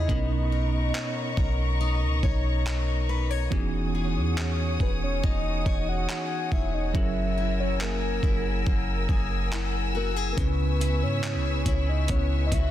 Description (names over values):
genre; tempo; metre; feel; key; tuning
contemporary R&B; 70 BPM; 4/4; straight; unclear; A4 = 439 Hz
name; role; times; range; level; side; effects
soft octave-layered synth lead; melody; 0.0-12.7 s; A#4 to F#5; -33 LUFS; left 1 dB; chorus, tape echo
bell-like tine electric piano; accompaniment; 0.0-12.7 s; B2 to B4; -32 LUFS; right 4 dB; fast stereo tremolo
warm studio string section; sustained chords; 0.0-12.7 s; B3 to E6; -34 LUFS; left 2 dB; sidechain pumping
picked steel-string acoustic guitar; arpeggios; 0.0-12.7 s; C#3 to C#5; -35 LUFS; left 10 dB; tape echo
soft 808-style bass; bass; 0.0-12.7 s; E1 to G#2; -27 LUFS; equal; none
dusty soul sampler-style drum kit; drums; 0.1-12.7 s; handclaps, hi-hat, kick drum; -28 LUFS; equal; overdrive
room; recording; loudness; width
digital ambience; dense, heavily limited modern master; -24 LUFS; side -12 dB against mid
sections
0.0-12.7 A section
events
break 0.0-10.4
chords
0.1 Bmaj9; 3.5 Emaj13; 6.9 F#9; 10.4 C#m7